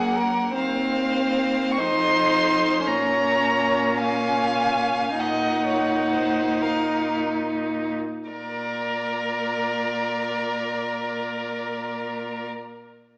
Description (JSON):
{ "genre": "classical, slow romantic movement for string quartet", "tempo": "33-57 BPM (dotted quarters)", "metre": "6/8", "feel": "rubato", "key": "unclear", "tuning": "A4 = 445 Hz", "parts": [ { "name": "rich violin", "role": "melody", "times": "0.0-12.5 s", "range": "F5 to Db6", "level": "-29 LUFS", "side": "equal", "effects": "none" }, { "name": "clear violin", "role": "second line", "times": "0.0-12.5 s", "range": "Ab4 to F5", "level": "-30 LUFS", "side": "equal", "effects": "none" }, { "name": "clear viola", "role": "accompaniment", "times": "0.0-12.5 s", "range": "Bb3 to Bb4", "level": "-28 LUFS", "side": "equal", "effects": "none" }, { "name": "clear cello", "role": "bass", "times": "0.0-12.5 s", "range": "Eb2 to Bb2", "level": "-33 LUFS", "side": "equal", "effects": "none" } ], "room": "wet stone room reverb, RT60 1.3 s", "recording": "small speaker sound", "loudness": "-24 LUFS", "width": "mono", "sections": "0.0-8.3 A section; 8.3-13.2 B section", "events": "slowing down 1.8-8.3", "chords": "0.0 Gb; 0.6 Cmadd11/Eb; 1.8 F5; 2.9 Bbm; 5.2 Ebm/Bb; 8.3 Bb", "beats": "| 0.56 1.78 | 2.86 3.97 | 5.18 6.62 | 8.30 9.93 | 11.54" }